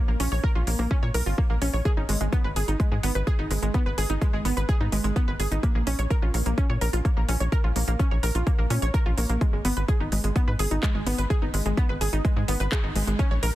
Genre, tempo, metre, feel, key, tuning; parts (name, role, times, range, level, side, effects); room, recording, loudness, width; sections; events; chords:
melodic techno; 127 BPM; 4/4; straight; A4 = 442 Hz
wide unison pluck; arpeggios; 0.0-13.5 s; Ab3 to Db5; -29 LUFS; right 1 dB; cassette tape, sidechain pumping, digital delay
tight sequencer bass; bass; 0.1-13.5 s; Ab1 to Bb2; -26 LUFS; equal; sidechain pumping
house drum kit; drums; 0.2-13.5 s; handclaps, hi-hat; -33 LUFS; right 1 dB
electronic kick drum; drums; 0.4-13.3 s; -24 LUFS; equal
digital ambience; dense, heavily limited modern master; -22 LUFS; side -15 dB against mid
0.0-13.6 A section
0.0 Bbm; 1.9 Abm; 5.6 Bbm; 9.4 Abm